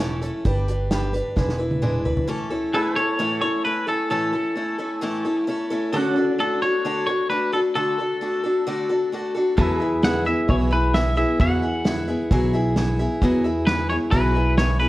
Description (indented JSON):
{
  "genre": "honky-tonk and classic country",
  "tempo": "132 BPM",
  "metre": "4/4",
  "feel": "straight",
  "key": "A major",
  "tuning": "A4 = 440 Hz",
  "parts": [
    { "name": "picked steel-string acoustic guitar", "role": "accompaniment", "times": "0.0-14.9 s", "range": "A2 to E5", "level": "-23 LUFS", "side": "left 1 dB", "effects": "none" },
    { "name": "upright bass", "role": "bass", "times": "0.0-2.1, 9.6-14.9 s", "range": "E1 to E2", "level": "-24 LUFS", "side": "equal", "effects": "none" },
    { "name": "unplugged drum kit", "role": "drums", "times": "0.2-2.3, 9.6-14.7 s", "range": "hi-hat, kick drum, snare drum, toms", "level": "-24 LUFS", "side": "equal", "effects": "none" },
    { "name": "twangy electric guitar", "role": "melody", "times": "2.7-14.9 s", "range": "A4 to F#5", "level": "-24 LUFS", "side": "left 1 dB", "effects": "none" },
    { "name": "pedal steel guitar", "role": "sustained chords", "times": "2.7-14.9 s", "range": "D4 to F#5", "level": "-28 LUFS", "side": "right 1 dB", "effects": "none" }
  ],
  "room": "moderate recital hall reverb, RT60 1.6 s",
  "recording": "worn, warbling old tape, cassette tape, warbly pitch drift",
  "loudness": "-19 LUFS",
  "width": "side -17 dB against mid",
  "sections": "0.0-2.3 A section; 2.3-14.9 B section",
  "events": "drum fill 1.4-2.3",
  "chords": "0.5 G; 1.4 E7; 2.3 A; 5.9 D; 9.6 Eadd9",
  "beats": "| 0.45 0.91 1.37 1.83 | 2.28 2.74 3.20 3.65 | 4.11 4.57 5.02 5.48 | 5.94 6.39 6.85 7.30 | 7.76 8.21 8.67 9.12 | 9.58 10.03 10.49 10.94 | 11.40 11.85 12.31 12.76 | 13.22 13.67 14.12 14.58"
}